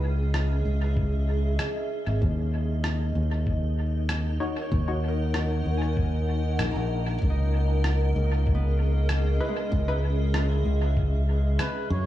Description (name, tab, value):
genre	ambient dub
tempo	96 BPM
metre	4/4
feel	straight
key	C# dorian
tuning	A4 = 439 Hz
part	granular cloud pad	sustained chords	0.0-12.1 s	C#4 to F#5	-32 LUFS	equal	built-in reverb
part	modern bright fingered electric bass	bass	0.0-12.1 s	G#1 to F#2	-24 LUFS	equal	none
part	electronic rim click	drums	0.3-11.7 s	none	-34 LUFS	equal	dub echo
part	electronic kick drum	drums	1.0-11.1 s	none	-28 LUFS	equal	none
part	filtered dub chord stab	stabs	4.4-5.0, 9.4-10.0 s	D#4 to C#5	-36 LUFS	left 2 dB	chorus, dub echo
part	Celtic harp	arpeggios	4.6-12.1 s	G#3 to A#5	-37 LUFS	equal	dub echo
part	trumpet with cup mute	melody	11.6-12.1 s	B4 to C#5	-33 LUFS	left 1 dB	none
room	little or no reverb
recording	echo-heavy mix, small room reverb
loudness	-23 LUFS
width	side -13 dB against mid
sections	0.0-12.1 A section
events	none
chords	0.0 C#madd9; 2.2 D#m7; 7.2 C#m9